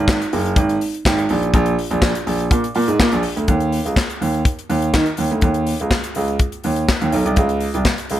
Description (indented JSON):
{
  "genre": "disco",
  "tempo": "124 BPM",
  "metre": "4/4",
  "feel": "straight",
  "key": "unclear",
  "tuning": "A4 = 440 Hz",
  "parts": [
    { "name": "warm concert grand piano", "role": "bass", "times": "0.0-8.2 s", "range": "Gb1 to D#3", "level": "-18 LUFS", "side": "right 1 dB", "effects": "none" },
    { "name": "tight funk drum kit", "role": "drums", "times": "0.1-8.2 s", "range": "handclaps, hi-hat, kick drum, snare drum", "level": "-19 LUFS", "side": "left 1 dB", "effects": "none" }
  ],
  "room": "little or no reverb",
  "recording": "none",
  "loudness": "-16 LUFS",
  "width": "side -12 dB against mid",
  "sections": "0.0-3.5 A section; 3.5-8.2 B section",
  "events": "none",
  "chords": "none",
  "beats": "0.08 0.57 1.05 | 1.54 2.02 2.51 3.00 | 3.48 3.97 4.45 4.94 | 5.43 5.91 6.40 6.88 | 7.37 7.86"
}